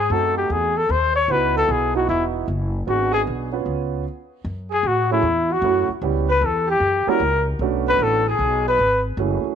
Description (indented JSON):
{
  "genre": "jazz",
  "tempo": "152 BPM",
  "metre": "4/4",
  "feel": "swing 66% on 8ths",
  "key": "C# minor, F# minor from 4.4 s",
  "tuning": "A4 = 442 Hz",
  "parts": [
    { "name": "mellow trumpet", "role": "melody", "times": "0.0-9.0 s", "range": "E4 to C#5", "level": "-20 LUFS", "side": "left 4 dB", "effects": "none" },
    { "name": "breathy alto saxophone", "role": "second line", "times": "0.0-9.0 s", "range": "E4 to C#5", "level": "-27 LUFS", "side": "right 10 dB", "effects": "none" },
    { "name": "upright bass", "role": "bass", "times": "0.0-9.5 s", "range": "E1 to A2", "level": "-25 LUFS", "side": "equal", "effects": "none" },
    { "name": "warm grand piano", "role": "accompaniment", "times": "0.1-9.6 s", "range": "F#3 to B4", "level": "-24 LUFS", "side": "right 13 dB", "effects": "none" }
  ],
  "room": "light reverb, studio reverb",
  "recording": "1960s-style stereo",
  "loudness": "-18 LUFS",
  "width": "side -8 dB against mid",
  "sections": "0.0-4.4 A section; 4.4-9.6 B section",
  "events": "stop 4.1-4.4",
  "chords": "0.0 G#7b9; 1.3 C#m11; 2.9 G#m7b5; 3.7 C#7; 4.4 F#m9; 6.0 C#m7b5; 6.8 F#7b9; 7.6 Bm7",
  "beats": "0.11 0.51 0.90 | 1.29 1.69 2.08 2.48 | 2.87 3.27 3.66 4.05 | 4.45 4.84 5.24 5.63 | 6.03 6.42 6.82 7.21 | 7.60 8.00 8.39 8.79 | 9.18"
}